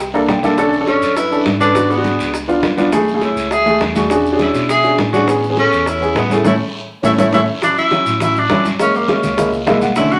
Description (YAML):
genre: Afro-Cuban jazz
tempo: 204 BPM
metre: 4/4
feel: straight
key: A major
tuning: A4 = 441 Hz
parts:
  - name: tine electric piano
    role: bass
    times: 0.0-10.2 s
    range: B1 to B2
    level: -27 LUFS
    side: equal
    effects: none
  - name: congas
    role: percussion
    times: 0.0-10.2 s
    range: none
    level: -28 LUFS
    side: equal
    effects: none
  - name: guiro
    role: percussion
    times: 0.0-10.2 s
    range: none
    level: -30 LUFS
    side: equal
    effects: none
  - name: warm baby grand piano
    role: accompaniment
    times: 0.1-10.2 s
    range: D3 to Bb5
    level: -18 LUFS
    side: equal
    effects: none
  - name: bongos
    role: percussion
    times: 0.1-10.1 s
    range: none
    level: -25 LUFS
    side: equal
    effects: none
  - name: maracas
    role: percussion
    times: 0.1-10.2 s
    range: none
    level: -39 LUFS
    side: equal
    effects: none
  - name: clear tenor saxophone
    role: melody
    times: 0.9-10.2 s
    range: A3 to G#4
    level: -19 LUFS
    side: equal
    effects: none
  - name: breathy mellow concert flute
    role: second line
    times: 0.9-7.4 s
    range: E4 to E5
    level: -25 LUFS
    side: equal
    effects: none
room: wet large studio reverb, RT60 0.9 s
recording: none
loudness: -15 LUFS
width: mono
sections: 0.0-7.6 A section; 7.6-10.2 B section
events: grand piano fill 0.0-0.6, 7.2-7.6, 9.5-10.0; band accent 6.5-7.6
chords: 0.0 C13; 0.6 Bm7; 1.8 G#m7b5; 2.3 C#7b9; 2.9 F#m9; 4.1 E13; 5.3 Amaj9; 7.6 Dmaj7; 8.8 F#7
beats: 0.28 | 0.57 0.87 1.16 1.46 | 1.75 2.04 2.34 2.63 | 2.93 3.22 3.51 3.81 | 4.10 4.39 4.69 4.98 | 5.28 5.57 5.86 6.16 | 6.45 6.74 7.04 7.33 | 7.62 7.92 8.21 8.50 | 8.79 9.09 9.38 9.67 | 9.96